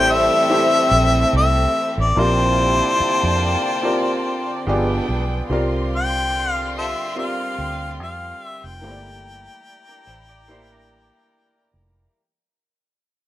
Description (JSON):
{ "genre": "soul", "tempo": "72 BPM", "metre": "4/4", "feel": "swing 54% on 16ths", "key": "G dorian", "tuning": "A4 = 440 Hz", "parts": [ { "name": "warm harmonica", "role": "melody", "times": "0.0-11.8 s", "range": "A4 to A5", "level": "-20 LUFS", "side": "left 2 dB", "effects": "none" }, { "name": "rich studio violin section", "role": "second line", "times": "0.0-12.1 s", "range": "C4 to C6", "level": "-28 LUFS", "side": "right 1 dB", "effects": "none" }, { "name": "warm concert grand piano", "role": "accompaniment", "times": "0.0-12.2 s", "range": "A3 to E5", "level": "-25 LUFS", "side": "equal", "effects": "none" }, { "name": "clear studio string section", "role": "sustained chords", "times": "0.0-12.1 s", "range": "D3 to G5", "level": "-29 LUFS", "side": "left 1 dB", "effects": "none" }, { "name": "warm trombone section", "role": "stabs", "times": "0.0-5.1 s", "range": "A2 to E4", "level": "-26 LUFS", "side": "right 3 dB", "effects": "none" }, { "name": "vintage muted fingered electric bass", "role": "bass", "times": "0.0-12.1 s", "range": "F1 to F2", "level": "-22 LUFS", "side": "right 1 dB", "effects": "none" }, { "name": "vibraphone with medium hard mallets", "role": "texture", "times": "0.0-8.6 s", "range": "G5 to E6", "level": "-36 LUFS", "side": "equal", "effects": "none" }, { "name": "semi-hollow electric guitar", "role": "riff", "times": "9.9-11.9 s", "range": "D4 to D5", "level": "-57 LUFS", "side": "right 5 dB", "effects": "ensemble chorus" } ], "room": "small room ambience", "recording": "rough home demo mix", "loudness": "-16 LUFS", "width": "side -14 dB against mid", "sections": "0.0-12.2 A section", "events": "fade-out 0.0-12.2", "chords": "0.0 Am7; 2.2 Bb69; 4.7 G7b9; 5.5 C9sus4; 8.8 Gm69", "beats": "0.50 1.33 | 2.17 3.00 3.83 4.66 | 5.50 6.33 7.16 7.99 | 8.83 9.66 10.49 11.33" }